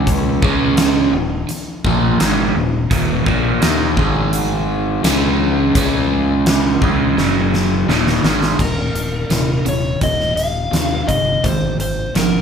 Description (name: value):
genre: classic rock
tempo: 84 BPM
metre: 4/4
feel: straight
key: unclear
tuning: A4 = 440 Hz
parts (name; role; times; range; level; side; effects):
- crunchy overdriven guitar; riff; 0.0-12.4 s; Eb2 to Eb4; -20 LUFS; left 5 dB; none
- crunchy overdriven guitar; riff; 0.0-12.4 s; Eb2 to Eb4; -20 LUFS; right 7 dB; phaser
- fingered electric bass; bass; 0.0-12.4 s; Eb1 to Eb2; -23 LUFS; left 1 dB; none
- huge arena drum kit; drums; 0.1-12.3 s; crash cymbal, hi-hat, kick drum, snare drum; -19 LUFS; equal; none
- overdriven slide guitar; melody; 8.6-12.4 s; Bb4 to F5; -21 LUFS; left 2 dB; none
room: moderate large studio reverb, RT60 1.3 s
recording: band playing live in one room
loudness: -14 LUFS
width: side -7 dB against mid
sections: 0.0-8.6 A section; 8.6-12.4 B section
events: drum fill 7.2-8.6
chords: 0.0 Db5; 1.1 Eb5; 4.0 Ab5; 5.0 Db5; 7.2 Gb5; 7.9 Eb5; 11.4 Abadd9